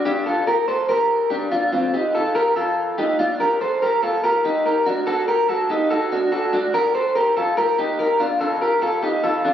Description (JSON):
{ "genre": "indie pop", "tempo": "144 BPM", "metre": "4/4", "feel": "straight", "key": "Bb major", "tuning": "A4 = 440 Hz", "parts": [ { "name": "electric guitar through a small old amp", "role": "solo", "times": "0.0-9.5 s", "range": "C4 to C5", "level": "-18 LUFS", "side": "equal", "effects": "analog chorus, tape echo" } ], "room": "moderate small room reverb, RT60 0.5 s", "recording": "recorded on a phone in the room, studio reverb", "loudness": "-18 LUFS", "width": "side -10 dB against mid", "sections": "0.0-3.4 A section; 3.4-9.5 B section", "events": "none", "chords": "0.1 Bb6; 1.7 F7; 3.4 Cm7; 4.9 D; 6.7 Bb6; 8.4 F7" }